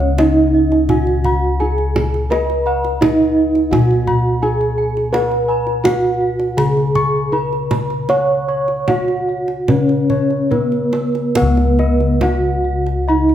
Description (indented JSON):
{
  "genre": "Javanese gamelan",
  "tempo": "70-85 BPM",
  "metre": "4/4",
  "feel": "straight",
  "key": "Db slendro",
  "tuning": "A4 = 440 Hz",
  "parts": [
    { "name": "gamelan-type bronze metallophone", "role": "melody", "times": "0.0-13.3 s", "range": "Cb4-45c to Db5", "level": "-17 LUFS", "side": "right 1 dB", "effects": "none" },
    { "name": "gamelan-type bossed gongs", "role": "arpeggios", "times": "0.0-13.3 s", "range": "Cb5-45c to Db6", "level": "-24 LUFS", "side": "left 3 dB", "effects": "none" },
    { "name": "gamelan-type bronze metallophone", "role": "arpeggios", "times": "0.0-13.3 s", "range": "Cb5-45c to Db6", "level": "-25 LUFS", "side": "right 4 dB", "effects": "none" },
    { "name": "gamelan-type bossed gongs", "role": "bass", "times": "0.0-13.3 s", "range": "Db2 to Db5", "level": "-19 LUFS", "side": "left 1 dB", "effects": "none" },
    { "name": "kendang", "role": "percussion", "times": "0.0-13.3 s", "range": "none", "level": "-22 LUFS", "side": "right 2 dB", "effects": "none" }
  ],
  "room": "light reverb",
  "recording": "none",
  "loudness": "-14 LUFS",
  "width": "side -10 dB against mid",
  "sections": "0.0-11.4 A section; 11.4-13.3 B section",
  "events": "none",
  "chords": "none"
}